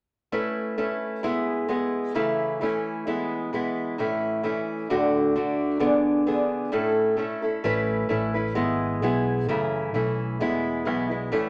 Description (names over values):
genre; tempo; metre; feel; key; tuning
celtic folk, Celtic polka; 131 BPM; 2/4; swing 53% on 8ths; A major; A4 = 440 Hz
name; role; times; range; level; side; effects
fingerpicked old ladder-braced acoustic guitar; accompaniment; 0.3-11.5 s; D2 to B4; -26 LUFS; equal; none
fingered electric bass; bass; 7.6-11.5 s; E1 to B1; -33 LUFS; equal; none
room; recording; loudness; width
wet small room reverb, RT60 0.5 s; none; -26 LUFS; mono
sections
0.3-7.7 A section; 7.7-11.5 A section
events
none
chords
0.3 Aadd9; 1.2 E/G#; 2.2 F#m7; 3.1 E; 4.0 A; 4.9 D; 5.8 E7; 6.7 A; 7.7 Aadd9; 8.6 E/G#; 9.5 F#m7; 10.4 E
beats
| 0.32 0.78 | 1.24 1.70 | 2.15 2.61 | 3.07 3.53 | 3.99 4.45 | 4.90 5.36 | 5.82 6.28 | 6.74 7.19 | 7.65 8.11 | 8.57 9.03 | 9.49 9.95 | 10.40 10.86 | 11.32